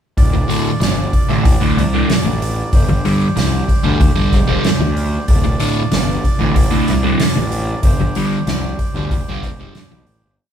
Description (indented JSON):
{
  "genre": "psychedelic rock",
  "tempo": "94 BPM",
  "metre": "4/4",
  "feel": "straight",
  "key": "D minor",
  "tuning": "A4 = 440 Hz",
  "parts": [
    { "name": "overdriven combo organ", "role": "sustained chords", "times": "0.2-10.4 s", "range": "D4 to D5", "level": "-27 LUFS", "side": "right 2 dB", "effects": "none" },
    { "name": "fuzz picked electric bass", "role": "bass", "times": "0.2-10.4 s", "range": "D1 to D2", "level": "-20 LUFS", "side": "equal", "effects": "overdrive" },
    { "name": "soft-mallet drum kit", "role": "drums", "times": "0.2-10.2 s", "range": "hi-hat, kick drum, snare drum", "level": "-16 LUFS", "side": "equal", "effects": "none" },
    { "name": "fuzz guitar", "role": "riff", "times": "0.3-9.9 s", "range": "D2 to G3", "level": "-17 LUFS", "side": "equal", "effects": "distortion, phaser" }
  ],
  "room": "moderate studio reverb, RT60 0.7 s",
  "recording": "band playing live in one room",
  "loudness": "-13 LUFS",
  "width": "side -9 dB against mid",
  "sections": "0.2-10.4 groove",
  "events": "fade-out 7.8-10.4",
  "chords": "0.2 Dm; 2.7 Gsus4; 5.3 Dm; 7.8 Gsus4"
}